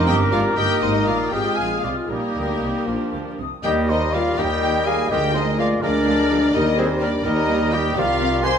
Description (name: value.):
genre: quick classical-period movement for symphony orchestra.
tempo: 76-85 BPM (dotted quarters).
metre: 6/8.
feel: rubato.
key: Eb major.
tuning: A4 = 439 Hz.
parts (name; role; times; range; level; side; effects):
dark studio violin section; melody; 0.0-8.6 s; Bb4 to C6; -26 LUFS; left 2 dB; none.
bright clarinet; second line; 0.0-8.6 s; Bb3 to Bb4; -29 LUFS; left 3 dB; none.
bright large flute ensemble; second line; 0.0-8.6 s; Ab4 to F6; -28 LUFS; left 3 dB; none.
warm oboe; second line; 0.0-8.6 s; G4 to Ab5; -30 LUFS; equal; none.
mellow bassoon; accompaniment; 0.0-8.6 s; Eb3 to Bb3; -28 LUFS; right 1 dB; none.
warm symphonic viola section; accompaniment; 0.0-8.5 s; Eb3 to G4; -30 LUFS; right 2 dB; none.
dark French horn section; sustained chords; 0.0-8.6 s; F3 to C5; -26 LUFS; left 3 dB; none.
mellow trumpet; stabs; 0.0-8.6 s; C4 to C5; -27 LUFS; right 1 dB; none.
clear chamber double bass section; bass; 0.0-8.6 s; G1 to Eb2; -27 LUFS; right 3 dB; none.
rich chamber cello section; bass; 0.0-8.6 s; C2 to D3; -27 LUFS; right 2 dB; none.
clear chamber violin section; second line; 0.1-8.5 s; Bb3 to Ab4; -33 LUFS; left 3 dB; none.
room: moderate recital hall reverb, RT60 1.5 s.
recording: none.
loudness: -18 LUFS.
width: side -7 dB against mid.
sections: 0.0-3.6 A section; 3.6-8.6 B section.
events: none.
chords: 0.0 Bb7; 0.6 Eb; 1.3 Fm/Ab; 2.1 Eb; 2.9 Bb; 3.6 Eb; 5.1 Bb7/D; 6.5 Eb; 8.0 Cm.